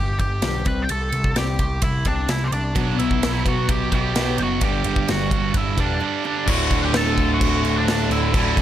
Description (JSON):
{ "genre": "quiet-loud alternative rock", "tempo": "129 BPM", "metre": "4/4", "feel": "straight", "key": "D mixolydian", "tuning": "A4 = 440 Hz", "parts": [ { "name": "octave-fuzz lead guitar", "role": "melody", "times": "0.0-8.5 s", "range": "D4 to B5", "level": "-26 LUFS", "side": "equal", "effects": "distortion" }, { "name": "picked steel-string acoustic guitar", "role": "arpeggios", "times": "0.0-6.5 s", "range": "G2 to C4", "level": "-29 LUFS", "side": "left 6 dB", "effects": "none" }, { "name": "overdriven picked electric bass", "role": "bass", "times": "0.0-8.6 s", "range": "D1 to C2", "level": "-24 LUFS", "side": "equal", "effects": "none" }, { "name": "big rock drum kit", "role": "drums", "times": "0.2-8.6 s", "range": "crash cymbal, kick drum, ride cymbal, snare drum", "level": "-24 LUFS", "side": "equal", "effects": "none" }, { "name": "high-gain distorted guitar", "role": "riff", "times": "2.8-8.6 s", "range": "D2 to B3", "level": "-24 LUFS", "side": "right 12 dB", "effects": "distortion" }, { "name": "tight distorted guitar", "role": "riff", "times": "6.5-8.6 s", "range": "D2 to D3", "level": "-24 LUFS", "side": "left 12 dB", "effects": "distortion" } ], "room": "small room ambience", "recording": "none", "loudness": "-18 LUFS", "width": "side -11 dB against mid", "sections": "0.0-6.5 A section; 6.5-8.6 B section", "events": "break 6.0-6.5", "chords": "0.0 G; 0.7 Csus2; 2.8 Bm; 4.6 G5; 6.5 Dadd9" }